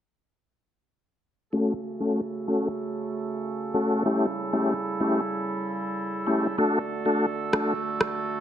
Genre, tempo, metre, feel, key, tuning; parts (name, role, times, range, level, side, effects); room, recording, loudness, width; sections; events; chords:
dancehall; 95 BPM; 4/4; straight; F# minor; A4 = 438 Hz
tonewheel organ; accompaniment; 1.5-7.7 s; A3 to A4; -25 LUFS; left 1 dB; chorus vibrato, stopped rotary speaker, low-pass filter
warm woodwind section; sustained chords; 1.5-8.4 s; C#3 to A4; -30 LUFS; right 3 dB; low-pass filter
electronic rim click; drums; 7.5-8.2 s; -27 LUFS; right 1 dB
light reverb, studio reverb; -24 LUFS; side -10 dB against mid
1.5-8.4 A section
filter sweep 1.5-8.4
1.5 F#m; 4.1 A7; 6.6 D